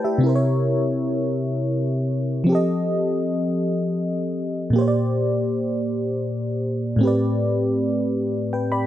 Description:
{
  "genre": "R&B",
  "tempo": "53 BPM (dotted quarters)",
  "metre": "6/8",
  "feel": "straight",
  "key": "unclear",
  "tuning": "A4 = 440 Hz",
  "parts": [
    { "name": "mellow FM electric piano", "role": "solo", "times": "0.0-8.9 s", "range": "A2 to B5", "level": "-20 LUFS", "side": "equal", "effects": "chorus" }
  ],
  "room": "moderate booth ambience, RT60 0.2 s",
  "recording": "dark, warm production",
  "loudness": "-20 LUFS",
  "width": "side -12 dB against mid",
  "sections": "0.0-8.9 A section",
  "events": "none",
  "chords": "0.2 C7b9; 2.5 F9; 4.8 Bb69; 7.0 Am11",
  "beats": "| 0.22 1.35 | 2.49 3.62 | 4.75 5.88 | 7.01 8.15"
}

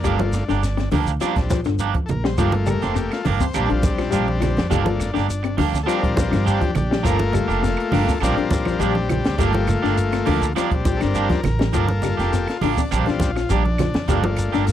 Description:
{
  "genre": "afrobeat",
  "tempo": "103 BPM",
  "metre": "4/4",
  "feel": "straight",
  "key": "G minor",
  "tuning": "A4 = 440 Hz",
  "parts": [
    { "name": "overdriven combo organ", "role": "accompaniment", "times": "0.0-14.7 s", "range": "G3 to C5", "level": "-25 LUFS", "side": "left 4 dB", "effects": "none" },
    { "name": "electric guitar through a small old amp", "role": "arpeggios", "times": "0.0-14.7 s", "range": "C3 to G3", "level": "-26 LUFS", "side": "left 9 dB", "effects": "spring reverb" },
    { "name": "electric guitar at the edge of break-up", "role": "stabs", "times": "0.0-14.7 s", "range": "F3 to G4", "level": "-25 LUFS", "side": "right 13 dB", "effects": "none" },
    { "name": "upright bass", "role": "bass", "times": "0.0-14.7 s", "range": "F1 to F2", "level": "-23 LUFS", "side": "right 1 dB", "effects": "none" },
    { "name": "compact cocktail drum kit", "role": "drums", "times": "0.0-14.7 s", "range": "hi-hat, kick drum, snare drum", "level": "-25 LUFS", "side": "equal", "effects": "none" },
    { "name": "shekere", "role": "percussion", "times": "0.0-14.7 s", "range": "none", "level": "-28 LUFS", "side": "left 1 dB", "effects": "none" },
    { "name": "congas", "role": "percussion", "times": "0.2-14.4 s", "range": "none", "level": "-26 LUFS", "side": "right 3 dB", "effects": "none" },
    { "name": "claves", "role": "percussion", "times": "2.7-14.5 s", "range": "none", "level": "-37 LUFS", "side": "right 10 dB", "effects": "none" }
  ],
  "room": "little or no reverb",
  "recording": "dry, close 1970s-style studio recording",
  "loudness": "-18 LUFS",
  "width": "side -11 dB against mid",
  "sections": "0.0-14.7 A section",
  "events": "transistor combo organ solo 0.0-14.7",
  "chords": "0.0 Gm7; 3.5 Bb6; 4.7 Gm7; 5.9 Bb6; 7.1 Gm7; 8.2 Bb6; 9.4 Gm7; 12.9 Bb6; 14.1 Gm7",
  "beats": "| 0.05 0.63 1.21 1.80 | 2.38 2.96 3.55 4.13 | 4.72 5.30 5.88 6.47 | 7.05 7.64 8.22 8.81 | 9.39 9.98 10.57 11.15 | 11.74 12.32 12.91 13.50 | 14.09 14.67"
}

